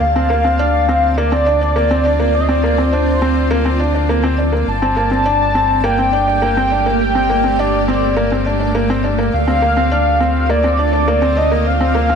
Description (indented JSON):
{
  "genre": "piano and strings electronica",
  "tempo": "103 BPM",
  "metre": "4/4",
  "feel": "straight",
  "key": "G minor",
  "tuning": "A4 = 440 Hz",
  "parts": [
    { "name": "warm velvety synth lead", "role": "melody", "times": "0.0-12.2 s", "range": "C5 to A5", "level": "-17 LUFS", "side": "equal", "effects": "chorus, cassette tape, ping-pong delay" },
    { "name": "granular cloud pad", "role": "sustained chords", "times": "0.0-12.2 s", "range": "A3 to A5", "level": "-21 LUFS", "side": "right 1 dB", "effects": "built-in reverb" },
    { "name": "round analog bass", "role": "bass", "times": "0.0-12.2 s", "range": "G1 to D2", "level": "-18 LUFS", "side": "equal", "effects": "none" },
    { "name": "felt-muted upright piano", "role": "riff", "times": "0.2-12.2 s", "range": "Bb3 to D4", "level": "-19 LUFS", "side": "equal", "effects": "ping-pong delay" }
  ],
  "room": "light reverb",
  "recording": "none",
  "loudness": "-13 LUFS",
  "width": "side -6 dB against mid",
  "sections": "0.0-12.2 A section",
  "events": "none",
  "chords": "0.0 Dm7; 4.7 Gmadd9; 9.3 Dm7"
}